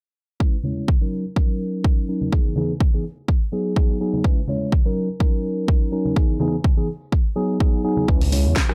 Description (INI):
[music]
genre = filtered disco house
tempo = 125 BPM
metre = 4/4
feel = swing 54% on 16ths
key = C# dorian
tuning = A4 = 442 Hz
[part]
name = mellow tine electric piano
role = accompaniment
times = 0.4-8.7 s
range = E3 to C#5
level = -26 LUFS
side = equal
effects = phaser, sidechain pumping, low-pass filter
[part]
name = electronic kick drum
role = drums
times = 0.4-8.7 s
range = none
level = -21 LUFS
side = equal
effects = overdrive
[part]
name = tambourine and congas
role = percussion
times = 0.4-8.7 s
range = none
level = -31 LUFS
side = equal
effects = sidechain pumping on perc, low-pass filter on perc, analog delay
[part]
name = fat analog bass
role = bass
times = 8.1-8.5 s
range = C#2 to E2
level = -21 LUFS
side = equal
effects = sidechain pumping, low-pass filter
[part]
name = house drum kit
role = drums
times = 8.2-8.7 s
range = hi-hat, rim click, snare drum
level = -27 LUFS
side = equal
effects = overdrive, sidechain pumping on hats
[sound]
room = little or no reverb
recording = echo-heavy mix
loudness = -21 LUFS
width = mono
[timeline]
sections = 0.4-8.7 A section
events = filter sweep 0.4-8.7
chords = 0.4 C#m7; 1.1 D#m7; 2.3 Emaj7; 3.0 G#m7; 4.2 C#m7; 5.0 D#m7; 6.2 Emaj7; 6.9 G#m7; 8.1 C#m7